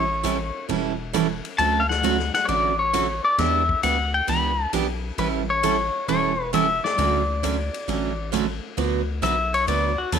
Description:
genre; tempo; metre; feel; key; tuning
country, western swing; 134 BPM; 4/4; swing 68% on 8ths; D major; A4 = 435 Hz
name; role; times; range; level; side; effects
pedal steel guitar; melody; 0.0-10.2 s; F#4 to B5; -22 LUFS; left 3 dB; none
picked steel-string acoustic guitar; accompaniment; 0.0-10.2 s; D3 to B4; -25 LUFS; right 12 dB; none
round analog bass; bass; 0.0-10.2 s; E1 to E2; -28 LUFS; left 2 dB; none
swinging big-band drum kit; drums; 0.2-10.2 s; hi-hat, kick drum, ride cymbal, snare drum; -32 LUFS; left 9 dB; none
room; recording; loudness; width
moderate plate reverb, RT60 1.5 s, studio reverb; 1960s-style stereo with parts hard left and right; -20 LUFS; side -7 dB against mid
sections
0.0-8.8 A section; 8.8-10.2 B section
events
pedal steel guitar solo 8.8-10.2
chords
0.0 A7; 1.6 Dmaj7; 3.4 Em7; 5.2 A7; 7.0 Dmaj7; 8.8 D6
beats
0.24 0.69 1.14 | 1.59 2.04 2.49 2.94 | 3.38 3.83 4.28 4.73 | 5.18 5.63 6.08 6.53 | 6.98 7.43 7.88 8.33 | 8.78 9.23 9.68 10.12

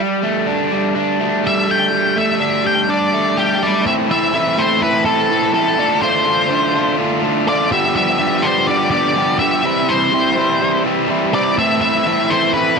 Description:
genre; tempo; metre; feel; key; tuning
rock; 124 BPM; 4/4; straight; A minor; A4 = 439 Hz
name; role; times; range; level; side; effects
overdriven electric guitar; riff; 0.0-12.8 s; G2 to G4; -16 LUFS; right 1 dB; none
octave-fuzz lead guitar; melody; 1.5-12.8 s; G4 to G5; -17 LUFS; left 1 dB; distortion
room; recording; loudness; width
light reverb; dry, close 1970s-style studio recording; -14 LUFS; side -5 dB against mid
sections
0.0-3.9 A section; 3.9-12.8 B section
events
lead electric guitar solo 0.0-3.9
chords
0.0 Gsus2; 3.9 Am; 5.8 Dm7; 7.7 G5; 9.6 C; 11.6 Am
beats
| 0.00 0.48 0.96 1.44 | 1.93 2.41 2.89 3.37 | 3.85 4.34 4.82 5.30 | 5.78 6.27 6.75 7.23 | 7.72 8.20 8.68 9.17 | 9.65 10.13 10.62 11.10 | 11.58 12.07 12.55

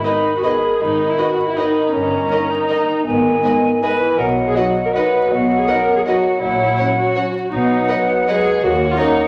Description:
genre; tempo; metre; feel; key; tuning
classical, orchestral ballroom waltz; 161 BPM; 3/4; uneven beats, rubato; G# minor; A4 = 438 Hz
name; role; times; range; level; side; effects
rich chamber violin section; melody; 0.0-9.1 s; D#5 to G#5; -38 LUFS; equal; none
silver concert flute; second line; 0.0-9.3 s; F#5 to B5; -23 LUFS; equal; none
warm chamber violin section; second line; 0.0-9.0 s; A#4 to D#5; -29 LUFS; equal; none
dark bassoon; accompaniment; 0.0-9.3 s; D#3 to Bb3; -23 LUFS; equal; none
dark chamber viola section; accompaniment; 0.0-9.3 s; B3 to B4; -22 LUFS; equal; none
mellow French horn section; sustained chords; 0.0-9.1 s; F#3 to D#4; -31 LUFS; equal; none
dark clarinet; second line; 0.1-9.3 s; B4 to D#5; -28 LUFS; equal; none
rich chamber double bass section; bass; 0.8-8.9 s; G1 to Eb2; -32 LUFS; equal; none
rich studio cello section; bass; 0.8-8.9 s; Eb2 to B2; -28 LUFS; equal; none
room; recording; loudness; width
wet recital hall reverb, RT60 1.4 s; vinyl crackle; -17 LUFS; mono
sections
0.0-9.3 A section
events
none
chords
0.0 G#m; 1.9 D#7/G; 3.1 G#m; 4.2 B; 6.4 F#7/A#; 7.5 B; 8.6 Ebm7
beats
0.04 0.43 | 0.81 1.19 1.58 | 1.94 2.32 2.71 | 3.07 3.44 3.83 | 4.19 4.56 4.94 | 5.31 5.67 6.06 | 6.42 6.78 7.16 | 7.52 7.89 8.27 | 8.63 8.99

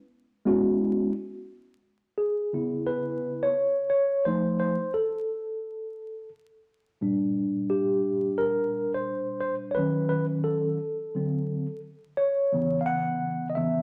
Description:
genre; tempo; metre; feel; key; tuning
hip hop; 87 BPM; 4/4; swing 65% on 16ths; unclear; A4 = 440 Hz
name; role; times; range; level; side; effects
mellow tine electric piano; solo; 0.5-13.8 s; A#2 to F#5; -27 LUFS; equal; none
room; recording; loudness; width
moderate large studio reverb, RT60 1.2 s; vinyl crackle; -27 LUFS; mono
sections
0.0-1.5 A section; 1.5-13.8 B section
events
tine electric piano solo 1.5-13.8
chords
0.0 C#m7; 4.3 F7; 7.0 A#6; 9.8 D#m7b5; 11.2 D7; 12.5 C#m7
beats
0.12 0.81 | 1.50 2.19 2.88 3.57 | 4.26 4.95 5.64 6.33 | 7.02 7.71 8.40 9.09 | 9.78 10.47 11.16 11.85 | 12.54 13.23

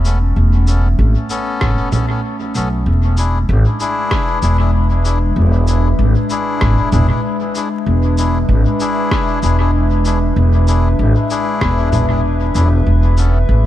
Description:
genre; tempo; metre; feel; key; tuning
ambient dub; 96 BPM; 4/4; swing 53% on 16ths; E mixolydian; A4 = 441 Hz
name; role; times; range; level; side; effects
warbly tape-like pad; sustained chords; 0.0-13.7 s; G#3 to E5; -21 LUFS; left 1 dB; chorus, built-in reverb
upright bass; bass; 0.0-13.6 s; E1 to B1; -13 LUFS; equal; none
electronic shaker, rim click and congas; drums; 0.0-13.3 s; none; -23 LUFS; right 1 dB; overdrive, dub echo
melodica; stabs; 0.1-13.4 s; B3 to A4; -22 LUFS; left 4 dB; dub echo
electronic kick drum; drums; 1.6-11.7 s; none; -20 LUFS; equal; overdrive
room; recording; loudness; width
little or no reverb; echo-heavy mix, vinyl crackle; -12 LUFS; side -13 dB against mid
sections
0.0-2.9 A section; 2.9-13.7 B section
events
none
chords
0.0 Aadd9/E; 2.9 E7; 12.9 Aadd9/E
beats
| 0.36 0.99 1.61 2.24 | 2.86 3.49 4.11 4.74 | 5.36 5.99 6.61 7.24 | 7.86 8.49 9.11 9.74 | 10.36 10.99 11.61 12.24 | 12.86 13.49

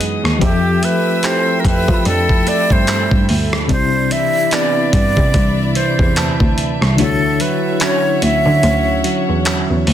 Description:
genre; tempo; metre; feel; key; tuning
contemporary R&B; 73 BPM; 4/4; swing 58% on 16ths; unclear; A4 = 442 Hz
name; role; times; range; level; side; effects
FM electric piano with tremolo; accompaniment; 0.0-9.9 s; C3 to E5; -22 LUFS; left 9 dB; none
warm studio string section; sustained chords; 0.0-9.9 s; G#4 to E6; -25 LUFS; left 2 dB; none
direct-recorded clean electric guitar; arpeggios; 0.0-9.9 s; C3 to G4; -22 LUFS; right 9 dB; warbly pitch drift
dusty soul sampler-style drum kit; drums; 0.0-9.9 s; handclaps, hi-hat, kick drum, rim click; -18 LUFS; equal; none
warm cello; bass; 0.2-9.9 s; C2 to F3; -18 LUFS; equal; none
breathy jazz flute; melody; 0.4-9.5 s; G4 to E5; -19 LUFS; equal; digital delay
synth chime; texture; 1.6-7.4 s; G5 to B5; -30 LUFS; left 1 dB; ensemble chorus, digital delay
room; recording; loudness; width
digital ambience; dense, heavily limited modern master; -12 LUFS; side -10 dB against mid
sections
0.0-9.9 A section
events
kick muted 7.0-9.9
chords
0.4 Fmaj9; 3.7 Cmaj9; 7.0 Dmaj9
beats
| 0.41 1.24 2.06 2.88 | 3.70 4.52 5.34 6.17 | 6.99 7.81 8.63 9.46

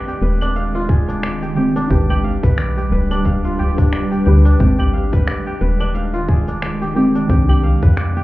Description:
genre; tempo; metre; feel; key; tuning
organic downtempo; 89 BPM; 4/4; swing 57% on 16ths; unclear; A4 = 440 Hz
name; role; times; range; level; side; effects
deep mellow chord stab; accompaniment; 0.0-8.2 s; Eb3 to B4; -20 LUFS; equal; chorus, sidechain pumping, digital delay
ethereal airy pad; sustained chords; 0.0-8.2 s; Eb3 to D5; -22 LUFS; equal; ensemble chorus, built-in reverb, sidechain pumping
kora; arpeggios; 0.0-8.2 s; D4 to F5; -23 LUFS; equal; digital delay
electronic shaker, claves and finger snaps; drums; 0.1-8.2 s; none; -28 LUFS; equal; none
woody FM bass; bass; 0.2-8.2 s; D1 to F2; -18 LUFS; equal; none
electronic kick drum; drums; 0.9-7.9 s; none; -15 LUFS; equal; none
udu; percussion; 2.1-7.6 s; none; -21 LUFS; equal; none
room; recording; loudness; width
light reverb; heard muffled through a wall, club reverb, EQ; -14 LUFS; side -17 dB against mid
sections
0.0-8.2 A section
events
none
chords
0.0 Abmaj7; 1.9 G7; 4.6 Abmaj7; 7.3 Cmadd9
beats
0.56 1.23 | 1.90 2.58 3.25 3.93 | 4.60 5.27 5.95 6.62 | 7.30 7.97

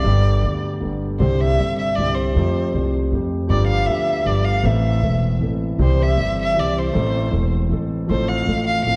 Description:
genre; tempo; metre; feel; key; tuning
tango; 157 BPM; 3/4; rubato; C major; A4 = 443 Hz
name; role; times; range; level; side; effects
warm violin; second line; 0.0-9.0 s; C5 to F5; -25 LUFS; equal; none
warm concert grand piano; accompaniment; 0.0-9.0 s; E1 to A4; -24 LUFS; equal; none
upright bass; bass; 0.0-9.0 s; E1 to F2; -23 LUFS; equal; none
room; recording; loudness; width
moderate concert hall reverb, RT60 2.2 s; dark, warm production; -20 LUFS; mono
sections
0.0-9.0 A section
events
violin solo 0.0-9.0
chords
0.0 G; 1.2 Csus2; 2.4 Fadd9; 3.5 G7; 4.6 Amadd9; 5.8 C; 6.9 Am; 8.1 F/A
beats
| 0.05 0.43 0.82 | 1.20 1.59 1.97 | 2.35 2.74 3.12 | 3.50 3.88 4.26 | 4.65 5.03 5.41 | 5.79 6.18 6.56 | 6.94 7.33 7.71 | 8.09 8.47 8.85

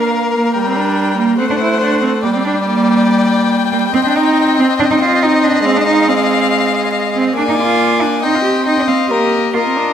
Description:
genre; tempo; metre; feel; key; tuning
quick classical-period movement for string quartet; 140 BPM; 4/4; straight; unclear; A4 = 440 Hz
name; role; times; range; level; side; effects
warm violin; melody; 0.0-9.9 s; Eb5 to Ab5; -20 LUFS; left 9 dB; none
warm violin; second line; 0.0-9.9 s; Bb4 to Eb5; -19 LUFS; left 4 dB; none
rich viola; accompaniment; 0.0-9.9 s; G3 to D4; -17 LUFS; right 1 dB; none
rich cello; bass; 0.0-9.9 s; Bb3 to G4; -15 LUFS; right 3 dB; none
room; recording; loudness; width
moderate scoring stage reverb, RT60 1.6 s; none; -11 LUFS; side -9 dB against mid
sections
0.0-9.9 A section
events
none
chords
0.0 Bb; 0.5 Gm; 1.4 F#dim/A; 2.2 Gm; 3.9 Cm; 5.7 Fm7/Ab; 7.4 Bb7; 8.2 Cm; 9.1 Bbsus4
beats
0.12 | 0.55 0.97 1.40 1.82 | 2.24 2.66 3.09 3.52 | 3.94 4.37 4.79 5.22 | 5.65 6.08 6.51 6.94 | 7.37 7.80 8.23 8.66 | 9.10 9.54

